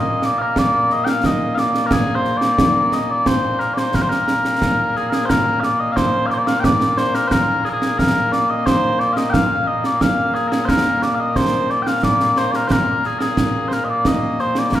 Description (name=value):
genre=scottish traditional, Scottish pipe music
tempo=89 BPM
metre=2/4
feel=straight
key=Bb mixolydian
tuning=A4 = 440 Hz
part: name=mellow small bagpipes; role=melody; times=0.0-14.8 s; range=Bb2 to G5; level=-17 LUFS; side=left 1 dB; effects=none
part: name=concert snare drum and concert bass drum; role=drums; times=0.2-14.8 s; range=none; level=-20 LUFS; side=right 1 dB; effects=none
room=wet recital hall reverb, RT60 1.8 s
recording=recorded in a church or concert hall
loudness=-15 LUFS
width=side -12 dB against mid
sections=0.0-5.3 A section; 5.3-14.8 B section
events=none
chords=none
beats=0.57 | 1.24 1.92 | 2.59 3.27 | 3.94 4.61 | 5.29 5.96 | 6.64 7.31 | 7.99 8.66 | 9.33 10.01 | 10.68 11.36 | 12.03 12.70 | 13.38 14.05 | 14.73